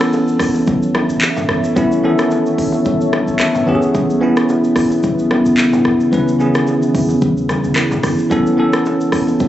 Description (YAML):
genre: afrobeats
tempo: 110 BPM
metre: 4/4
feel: swing 55% on 16ths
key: C# minor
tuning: A4 = 440 Hz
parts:
  - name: bell-like tine electric piano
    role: accompaniment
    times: 0.0-9.5 s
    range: D#3 to B4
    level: -15 LUFS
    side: equal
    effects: medium stereo tremolo
  - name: deep dark ambient pad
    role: sustained chords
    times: 1.0-9.5 s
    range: C#3 to F#5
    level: -19 LUFS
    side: left 2 dB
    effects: chorus, built-in reverb, phaser
  - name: afro-pop drum kit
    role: drums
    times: 0.0-9.5 s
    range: handclaps, hi-hat, kick drum, rim click, shaker, toms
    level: -21 LUFS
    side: equal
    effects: none
  - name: bongos and congas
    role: percussion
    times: 0.1-9.5 s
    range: none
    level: -25 LUFS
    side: left 3 dB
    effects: none
  - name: clean 808-style bass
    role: bass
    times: 0.4-9.5 s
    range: F#1 to E2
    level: -28 LUFS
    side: equal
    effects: none
room: moderate lush hall reverb, RT60 1.7 s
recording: recorded on a phone in the room, club reverb, compression, nothing above 8.0 kHz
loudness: -13 LUFS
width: side -12 dB against mid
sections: 0.0-9.5 A section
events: none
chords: 0.0 B9sus4; 3.7 C#m7; 8.3 B9sus4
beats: 0.13 0.67 1.22 | 1.76 2.31 2.86 3.40 | 3.95 4.49 5.04 5.58 | 6.13 6.67 7.22 7.76 | 8.31 8.86 9.40